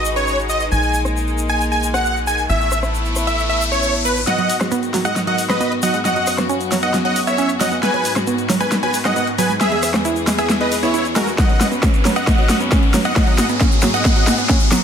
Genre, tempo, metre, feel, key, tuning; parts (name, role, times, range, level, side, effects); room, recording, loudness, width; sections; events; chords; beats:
uplifting trance; 135 BPM; 4/4; straight; G# minor; A4 = 440 Hz
dense compressed supersaw; melody; 0.0-14.3 s; E4 to G#5; -20 LUFS; equal; sidechain pumping, ping-pong delay
rich studio string section; sustained chords; 0.0-14.8 s; E2 to B4; -25 LUFS; left 2 dB; vintage 12-bit sampler grit, sidechain pumping
tight sequencer bass; bass; 0.0-4.2 s; G#1 to A#1; -22 LUFS; equal; sidechain pumping
egg shaker; percussion; 0.1-14.8 s; -31 LUFS; left 2 dB
riser; sound effects; 2.2-14.8 s; -27 LUFS; left 1 dB
big-room dance drum kit; drums; 1.1-14.8 s; hi-hat, rim click, snare drum; -21 LUFS; equal; overdrive, low-pass filter on snare, studio reverb, low-pass filter on hats
analog pluck; arpeggios; 4.4-14.8 s; F#3 to E4; -23 LUFS; right 6 dB; chorus, sidechain pumping, tape echo
electronic kick drum; drums; 11.4-14.6 s; -16 LUFS; equal; overdrive, studio reverb
moderate lush hall reverb, RT60 2.1 s; -15 LUFS; side -8 dB against mid
0.0-4.3 A section; 4.3-14.8 B section
riser 2.2-4.3, 4.3-14.8; build-up 4.3-14.8; drum fill 4.3-14.8; filter sweep on synth arpeggio sound 4.3-14.8
0.0 G#m7; 0.7 D#sus4/A#; 2.5 Asus2; 4.3 G#m7; 6.0 F#sus4; 7.8 G#m7; 9.6 E; 11.4 F#sus4; 13.2 G#m7
0.27 | 0.72 1.16 1.61 2.05 | 2.50 2.94 3.38 3.83 | 4.27 4.72 5.16 5.61 | 6.05 6.50 6.94 7.38 | 7.83 8.27 8.72 9.16 | 9.61 10.05 10.49 10.94 | 11.38 11.83 12.27 12.72 | 13.16 13.61 14.05 14.49